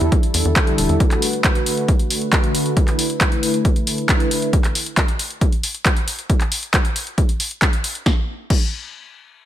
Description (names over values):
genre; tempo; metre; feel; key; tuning
uplifting trance; 136 BPM; 4/4; straight; unclear; A4 = 438 Hz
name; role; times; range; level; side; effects
supersaw pad; sustained chords; 0.0-4.5 s; D3 to B4; -21 LUFS; equal; sidechain pumping, low-pass filter
tight sequencer bass; bass; 0.0-1.0 s; E1 to E2; -18 LUFS; equal; sidechain pumping
punchy analog drum machine; drums; 0.0-8.6 s; crash cymbal, handclaps, hi-hat, snare drum; -22 LUFS; left 1 dB; sidechain pumping on hats, sidechain pumping on cymbals
electronic kick drum; drums; 0.1-8.6 s; none; -17 LUFS; equal; none
room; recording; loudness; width
little or no reverb; none; -16 LUFS; side -12 dB against mid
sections
0.0-8.1 A section; 8.1-9.5 B section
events
filter sweep on supersaw synth 0.0-4.5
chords
0.0 Em7; 1.0 Bm7; 4.5 N.C.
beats
0.12 0.56 | 1.00 1.44 1.88 2.33 | 2.77 3.21 3.65 4.09 | 4.53 4.97 5.41 5.86 | 6.30 6.74 7.18 7.62 | 8.06 8.50